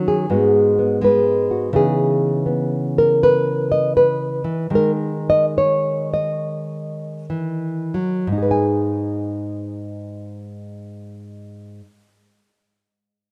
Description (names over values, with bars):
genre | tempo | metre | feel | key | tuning
solo jazz | 59-84 BPM | 4/4 | swing 66% on 8ths | G# minor | A4 = 437 Hz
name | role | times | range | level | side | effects
nylon-string guitar | solo | 0.0-12.0 s | G#2 to G#5 | -20 LUFS | equal | none
room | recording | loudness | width
light reverb, studio ambience | rough home demo mix | -19 LUFS | mono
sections
0.0-1.7 A section; 1.7-8.3 B section; 8.3-12.4 C section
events
slowing down 1.7-8.3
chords
0.3 G#m7; 1.7 C#m9; 4.7 D#sus4; 8.3 G#m